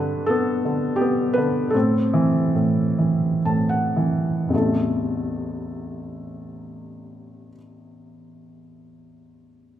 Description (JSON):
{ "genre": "classical, lyrical solo piano", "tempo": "50-86 BPM", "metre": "3/4", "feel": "rubato", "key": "A dorian", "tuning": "A4 = 440 Hz", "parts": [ { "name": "felt-muted upright piano", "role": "solo", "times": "0.0-9.8 s", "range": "A1 to A5", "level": "-20 LUFS", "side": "equal", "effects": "none" } ], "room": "moderate scoring stage reverb, RT60 1.6 s", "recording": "minimal, uncompressed stereo recording", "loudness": "-19 LUFS", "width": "side -11 dB against mid", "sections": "0.0-4.5 A section; 4.5-9.8 B section", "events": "slowing down 0.0-4.5; felt piano fill 3.0-4.5", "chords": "0.0 G; 1.7 Am" }